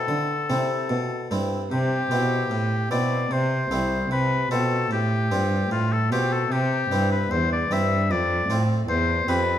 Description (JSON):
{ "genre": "classical, baroque-style sonata movement with continuo", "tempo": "75 BPM", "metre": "3/4", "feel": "straight", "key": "C major", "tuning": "A4 = 440 Hz", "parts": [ { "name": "clear oboe", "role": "melody", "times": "0.0-9.6 s", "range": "F4 to E5", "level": "-25 LUFS", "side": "left 4 dB", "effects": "none" }, { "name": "harpsichord", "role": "accompaniment", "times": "0.0-9.6 s", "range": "C2 to G4", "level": "-27 LUFS", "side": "equal", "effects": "none" }, { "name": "rich cello", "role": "bass", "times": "0.0-9.6 s", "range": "C2 to D3", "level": "-24 LUFS", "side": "right 1 dB", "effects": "none" } ], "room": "wet recital hall reverb, RT60 1.5 s", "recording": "dark, warm production", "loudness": "-21 LUFS", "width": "side -10 dB against mid", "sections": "0.0-1.7 A section; 1.7-9.6 A section", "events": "none", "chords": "0.0 Am; 1.7 C; 3.3 Am/C; 4.1 F; 6.5 C; 8.1 F; 8.9 C/E", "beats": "0.08 0.90 | 1.72 2.52 3.32 | 4.12 4.91 5.71 | 6.51 7.31 8.10 | 8.89" }